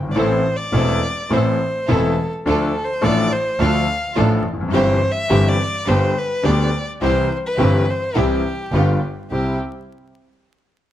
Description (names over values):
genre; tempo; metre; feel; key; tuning
tango; 105 BPM; 4/4; rubato; C major; A4 = 442 Hz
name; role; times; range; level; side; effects
bright concert grand piano; accompaniment; 0.0-9.6 s; E1 to A4; -19 LUFS; left 1 dB; none
clear double bass; bass; 0.0-9.5 s; E1 to D2; -22 LUFS; right 1 dB; none
warm violin; second line; 0.1-9.6 s; G4 to F5; -22 LUFS; left 1 dB; none
clear studio string section; stabs; 0.2-9.5 s; B3 to A4; -27 LUFS; right 2 dB; none
room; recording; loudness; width
light reverb; close, detailed microphones, vinyl crackle; -16 LUFS; side -12 dB against mid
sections
0.0-9.3 A section; 9.3-10.9 B section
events
violin solo 0.0-9.3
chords
0.2 Am; 2.5 Dm; 4.7 C/G; 5.9 G; 7.0 C; 8.7 G7; 9.3 C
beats
| 0.17 0.74 1.32 1.89 | 2.46 3.03 3.60 4.17 | 4.74 5.30 5.88 6.45 | 7.02 7.59 8.16 8.73 | 9.30